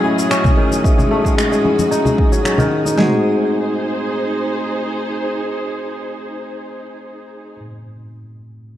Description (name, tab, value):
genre	organic downtempo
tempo	112 BPM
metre	4/4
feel	straight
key	G# phrygian dominant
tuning	A4 = 440 Hz
part	tine electric piano	accompaniment	0.0-8.8 s	A3 to E5	-22 LUFS	left 1 dB	lush chorus, sidechain pumping, tape echo
part	dark symphonic string section	sustained chords	0.0-7.6 s	F#3 to B#4	-23 LUFS	right 1 dB	vintage 12-bit sampler grit, sidechain pumping
part	kora	arpeggios	0.0-5.0 s	D#3 to G#4	-18 LUFS	left 1 dB	low-pass filter, tape echo
part	bongos and congas	percussion	0.0-3.0 s	none	-22 LUFS	left 2 dB	none
part	twinkling granular texture	texture	0.0-3.0 s	D#5	-31 LUFS	right 3 dB	built-in reverb
part	electronic shaker and finger snaps	drums	0.2-3.0 s	none	-25 LUFS	left 1 dB	overdrive
part	deep house drum kit	drums	0.4-3.1 s	kick drum, snare drum, toms	-16 LUFS	equal	overdrive
room	moderate lush hall reverb, RT60 2.1 s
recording	dark, warm production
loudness	-14 LUFS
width	side -12 dB against mid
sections	0.0-3.0 A section; 3.0-7.3 B section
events	filter sweep on kora 0.0-3.0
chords	0.0 F#m9; 3.0 G#7b9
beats	0.31 | 0.84 1.38 1.91 2.45 | 2.98 3.52 4.06 4.59 | 5.13 5.66 6.20 6.73